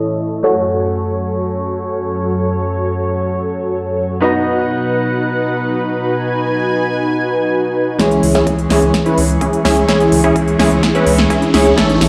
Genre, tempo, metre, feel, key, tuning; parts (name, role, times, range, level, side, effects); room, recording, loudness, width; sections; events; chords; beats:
EDM, festival progressive house; 127 BPM; 4/4; straight; C# minor; A4 = 438 Hz
bright grand piano; accompaniment; 0.0-12.1 s; E3 to D#5; -22 LUFS; equal; sidechain pumping, digital delay
lush unison pad; sustained chords; 0.0-12.1 s; F#2 to C#6; -23 LUFS; equal; chorus, sidechain pumping
supersaw stab; riff; 0.0-12.1 s; C#4 to C#5; -19 LUFS; equal; vintage 12-bit sampler grit, sidechain pumping, low-pass filter, digital delay
detuned saw bass; bass; 8.0-12.1 s; A1 to C#2; -22 LUFS; equal; chorus, sidechain pumping
big-room dance drum kit; drums; 8.0-12.1 s; hi-hat, snare drum; -20 LUFS; equal; overdrive
electronic kick drum; drums; 8.0-11.9 s; -28 LUFS; equal
riser; sound effects; 9.5-12.1 s; -28 LUFS; equal
moderate lush hall reverb, RT60 1.8 s; played on a big sound system in a bare room, large studio reverb, low-pass filter; -15 LUFS; mono
0.0-8.0 A section; 8.0-12.1 B section
filter sweep on analog synth pad 0.0-8.0; filter sweep 0.0-8.0; build-up 8.0-12.1; drum fill 8.0-12.1; filter sweep on supersaw synth 8.0-12.1
0.4 F#m; 4.2 B; 8.0 C#m
| 0.44 0.91 1.38 1.85 | 2.33 2.80 3.27 3.74 | 4.22 4.69 5.16 5.63 | 6.11 6.58 7.05 7.52 | 8.00 8.47 8.94 9.41 | 9.89 10.36 10.83 11.30 | 11.78